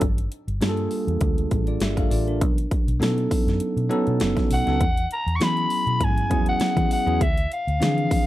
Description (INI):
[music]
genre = polished 1980s jazz-funk pop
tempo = 100 BPM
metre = 4/4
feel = swing 54% on 16ths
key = unclear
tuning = A4 = 441 Hz
[part]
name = bell-like tine electric piano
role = accompaniment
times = 0.0-8.3 s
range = E3 to F5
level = -25 LUFS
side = right 1 dB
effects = lush chorus
[part]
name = vintage muted fingered electric bass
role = bass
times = 0.0-8.1 s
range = F#1 to E3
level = -25 LUFS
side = equal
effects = none
[part]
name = big-room dance drum kit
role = drums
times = 0.0-8.3 s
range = hi-hat, kick drum, snare drum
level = -24 LUFS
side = equal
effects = none
[part]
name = raspy soprano saxophone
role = melody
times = 4.5-8.3 s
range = E5 to C#6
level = -24 LUFS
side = left 1 dB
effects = none
[sound]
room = little or no reverb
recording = dry, close 1970s-style studio recording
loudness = -20 LUFS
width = side -15 dB against mid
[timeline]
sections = 0.0-8.3 A section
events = none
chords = 0.0 Gm7; 2.4 B7; 4.8 E69; 7.2 Dm7b5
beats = | 0.02 0.62 1.22 1.82 | 2.42 3.02 3.62 4.21 | 4.81 5.41 6.01 6.61 | 7.21 7.81